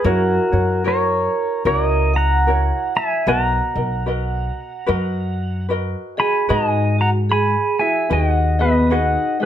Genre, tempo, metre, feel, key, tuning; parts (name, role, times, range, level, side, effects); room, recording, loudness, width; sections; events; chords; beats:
Hawaiian; 74 BPM; 4/4; swing 61% on 8ths; B major; A4 = 439 Hz
pedal steel guitar; melody; 0.0-9.5 s; F#4 to B5; -20 LUFS; equal; plate reverb
vibraphone with soft mallets; second line; 0.0-9.5 s; G#3 to F#5; -24 LUFS; right 2 dB
ukulele; accompaniment; 0.0-9.5 s; E4 to D#5; -25 LUFS; left 2 dB
upright bass; bass; 0.0-9.2 s; B1 to G#2; -20 LUFS; equal
moderate small room reverb, RT60 0.5 s; -16 LUFS; side -10 dB against mid
0.0-6.5 A section; 6.5-9.5 B section
0.1 F#7; 3.3 Bmaj7; 6.5 G#m7
| 0.05 0.86 1.66 2.47 | 3.27 4.08 4.89 5.69 | 6.50 7.30 8.11 8.91